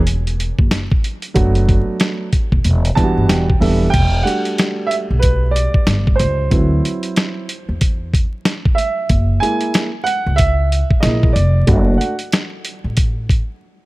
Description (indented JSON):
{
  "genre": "hip hop, jazz-hop",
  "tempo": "93 BPM",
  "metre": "4/4",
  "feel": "swing 61% on 16ths",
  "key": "E minor",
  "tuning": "A4 = 441 Hz",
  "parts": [
    { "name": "upright bass", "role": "bass", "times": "0.0-13.4 s", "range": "D#1 to E2", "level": "-16 LUFS", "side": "equal", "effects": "none" },
    { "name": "dusty soul sampler-style drum kit", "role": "drums", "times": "0.1-13.5 s", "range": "crash cymbal, hi-hat, kick drum, snare drum", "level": "-16 LUFS", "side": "equal", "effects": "none" },
    { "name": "dark baby grand piano", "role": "accompaniment", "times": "1.3-12.9 s", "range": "E3 to A5", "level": "-19 LUFS", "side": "right 2 dB", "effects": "none" }
  ],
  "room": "small room ambience",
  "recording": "vinyl crackle",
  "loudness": "-14 LUFS",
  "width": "side -20 dB against mid",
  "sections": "0.0-3.9 A section; 3.9-13.9 B section",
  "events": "grand piano fill 3.0-3.9; grand piano solo 3.9-13.9; break 13.6",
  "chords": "0.0 F#7(no3); 1.4 Bm7/F#; 2.7 Em7; 3.9 Em11; 6.5 D13 (rootless); 9.1 F#7; 11.7 F#m"
}